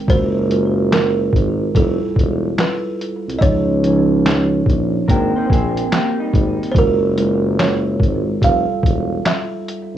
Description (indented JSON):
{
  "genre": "lo-fi hip hop",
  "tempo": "72 BPM",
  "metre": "4/4",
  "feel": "swing 66% on 16ths",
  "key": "Gb lydian",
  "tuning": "A4 = 438 Hz",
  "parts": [
    { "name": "mellow tine electric piano", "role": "accompaniment", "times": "0.0-10.0 s", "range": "F3 to G5", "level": "-20 LUFS", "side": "right 2 dB", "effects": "slow stereo tremolo, cassette tape, low-pass filter" },
    { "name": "buzzing kalimba", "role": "melody", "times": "0.1-10.0 s", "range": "A4 to F5", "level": "-22 LUFS", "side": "right 3 dB", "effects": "low-pass filter, analog delay" },
    { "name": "warm tuba", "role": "bass", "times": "0.1-10.0 s", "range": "E1 to Db2", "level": "-20 LUFS", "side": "equal", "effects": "none" },
    { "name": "lo-fi sampler-style drum kit", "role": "drums", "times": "0.1-9.9 s", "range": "handclaps, hi-hat, kick drum, snare drum", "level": "-17 LUFS", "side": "equal", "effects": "none" },
    { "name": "electric guitar through a small old amp", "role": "second line", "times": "5.1-6.7 s", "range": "G3 to C5", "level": "-24 LUFS", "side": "left 2 dB", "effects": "warbly pitch drift, low-pass filter, analog delay" }
  ],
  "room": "light reverb",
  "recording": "worn, warbling old tape, cassette tape, warbly pitch drift, small room reverb",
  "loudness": "-14 LUFS",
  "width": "side -11 dB against mid",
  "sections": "0.0-10.0 A section",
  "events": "none",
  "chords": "0.1 Gbmaj9; 1.7 Fmaj9; 3.4 Dbadd9; 5.1 Abmaj9; 6.7 Gbmaj9; 8.4 Fmaj9"
}